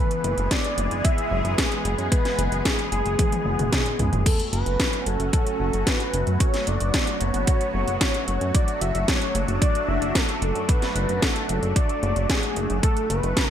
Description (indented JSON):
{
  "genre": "italo disco",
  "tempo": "112 BPM",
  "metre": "4/4",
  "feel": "straight",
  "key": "F# minor",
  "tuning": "A4 = 439 Hz",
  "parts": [
    { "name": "wide unison lead", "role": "melody", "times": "0.0-13.5 s", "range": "G#4 to E5", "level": "-27 LUFS", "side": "equal", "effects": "tape echo" },
    { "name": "lush unison pad", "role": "sustained chords", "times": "0.0-13.5 s", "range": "C#3 to G#4", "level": "-29 LUFS", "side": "left 1 dB", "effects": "chorus, phaser" },
    { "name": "house drum kit", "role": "drums", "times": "0.1-13.5 s", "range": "crash cymbal, hi-hat, snare drum, toms", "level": "-26 LUFS", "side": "equal", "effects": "gated reverb" },
    { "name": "chorused synth bass", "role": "bass", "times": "0.2-13.3 s", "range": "F#1 to F#2", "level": "-25 LUFS", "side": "equal", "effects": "none" },
    { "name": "electronic kick drum", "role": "drums", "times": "0.5-13.5 s", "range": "none", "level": "-23 LUFS", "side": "equal", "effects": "none" }
  ],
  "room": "light reverb, digital ambience",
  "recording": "none",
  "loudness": "-20 LUFS",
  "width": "side -10 dB against mid",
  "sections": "0.0-13.5 A section",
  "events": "drum fill 3.2-4.3",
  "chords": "0.0 E/F#; 4.3 F#m; 8.5 D/F#; 12.8 A"
}